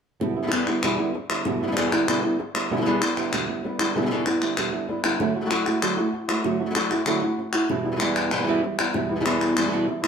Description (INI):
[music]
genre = flamenco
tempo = 192 BPM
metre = 4/4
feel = straight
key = E minor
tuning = A4 = 440 Hz
[part]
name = flamenco guitar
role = melody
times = 0.2-10.1 s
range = E2 to F#4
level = -24 LUFS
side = left 1 dB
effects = none
[part]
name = flamenco guitar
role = stabs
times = 0.2-10.1 s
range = E2 to F#4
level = -27 LUFS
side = right 4 dB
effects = none
[part]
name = palmas hand claps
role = percussion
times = 0.5-10.1 s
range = none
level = -27 LUFS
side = left 2 dB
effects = none
[sound]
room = wet studio reverb, RT60 0.8 s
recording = band playing live in one room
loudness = -21 LUFS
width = side -6 dB against mid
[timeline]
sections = 0.2-10.1 A section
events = none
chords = 0.2 Em7; 5.2 Dadd9; 7.7 Em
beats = | 0.21 0.52 0.83 1.15 | 1.46 1.77 2.08 2.40 | 2.71 3.02 3.33 3.64 | 3.95 4.27 4.58 4.89 | 5.20 5.51 5.82 6.13 | 6.45 6.76 7.07 7.38 | 7.69 8.01 8.32 8.63 | 8.94 9.26 9.57 9.88